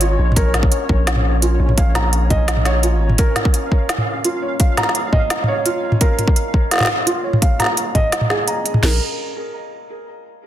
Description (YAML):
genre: half-time drum and bass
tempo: 170 BPM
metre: 4/4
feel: half-time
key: Bb minor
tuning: A4 = 440 Hz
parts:
  - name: felt-muted upright piano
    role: arpeggios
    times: 0.0-9.0 s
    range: F4 to Bb5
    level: -22 LUFS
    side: right 2 dB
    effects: vintage 12-bit sampler grit, low-pass filter, ping-pong delay
  - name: long sustained 808-style bass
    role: bass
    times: 0.0-3.2, 8.8-9.0 s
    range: Ab1 to Bb1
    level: -17 LUFS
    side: equal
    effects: tube saturation
  - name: organic electronic drum kit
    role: drums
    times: 0.0-8.8 s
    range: hi-hat, snare drum, toms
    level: -19 LUFS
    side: equal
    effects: none
  - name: pulsing gated texture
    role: texture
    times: 0.0-8.9 s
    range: Db4 to F5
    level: -28 LUFS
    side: left 2 dB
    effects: chorus, built-in reverb
  - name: trap drum kit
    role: drums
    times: 0.4-8.9 s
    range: crash cymbal, kick drum, snare drum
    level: -16 LUFS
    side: equal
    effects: overdrive
room: light reverb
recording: dense, heavily limited modern master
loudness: -14 LUFS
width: side -12 dB against mid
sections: 0.0-8.8 A section; 8.8-10.2 B section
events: none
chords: 0.0 Bbm; 8.8 N.C.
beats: 0.01 | 0.36 0.71 1.07 1.42 | 1.77 2.13 2.48 2.83 | 3.19 3.54 3.89 4.25 | 4.60 4.95 5.30 5.66 | 6.01 6.36 6.71 7.07 | 7.42 7.77 8.13 8.48 | 8.83